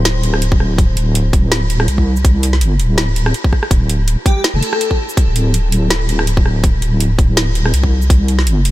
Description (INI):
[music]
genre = half-time drum and bass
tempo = 164 BPM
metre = 4/4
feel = swing 55% on 16ths, half-time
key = unclear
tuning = A4 = 441 Hz
[part]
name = deep soft wobble bass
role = bass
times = 0.0-8.7 s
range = D1 to C2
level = -14 LUFS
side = equal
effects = chorus
[part]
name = drum and bass drum kit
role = drums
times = 0.1-8.7 s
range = hi-hat, rim click, shaker, snare drum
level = -19 LUFS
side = equal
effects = none
[part]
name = electronic kick drum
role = drums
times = 0.5-8.2 s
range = none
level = -12 LUFS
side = equal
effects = none
[part]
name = airy dreamy lead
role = melody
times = 4.3-5.1 s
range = G4 to A4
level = -26 LUFS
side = left 2 dB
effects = chorus, tape echo
[sound]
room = little or no reverb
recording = none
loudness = -12 LUFS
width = side -16 dB against mid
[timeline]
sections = 0.0-8.7 A section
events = none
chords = none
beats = 0.05 0.42 | 0.78 1.15 1.51 1.88 | 2.25 2.61 2.98 3.34 | 3.71 4.08 4.44 4.81 | 5.17 5.54 5.91 6.27 | 6.64 7.00 7.37 7.74 | 8.10 8.47